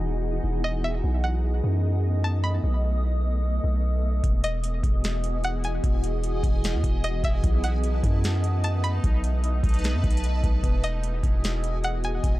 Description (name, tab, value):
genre	hip hop, atmospheric cloud-rap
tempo	150 BPM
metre	4/4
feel	half-time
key	E major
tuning	A4 = 440 Hz
part	shimmering ambient pad	sustained chords	0.0-12.4 s	E3 to D#5	-32 LUFS	equal	chorus, built-in reverb, sidechain pumping
part	long sustained 808-style bass	bass	0.0-12.4 s	E1 to F#2	-25 LUFS	equal	none
part	string-like resonator pluck	melody	0.6-12.2 s	D#5 to B5	-32 LUFS	equal	chorus, low-pass filter, analog delay
part	booming analog drum machine	drums	4.2-12.4 s	hi-hat, kick drum, snare drum	-24 LUFS	equal	overdrive
part	backwards swelling texture	texture	5.2-12.4 s	D#4 to A5	-38 LUFS	right 1 dB	built-in reverb
room	digital ambience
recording	dry, gritty hardware recording, cassette tape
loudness	-22 LUFS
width	side -17 dB against mid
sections	0.0-12.4 A section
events	none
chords	0.0 Emaj7; 1.0 B7; 4.2 Emaj7; 7.4 B7; 10.6 Emaj7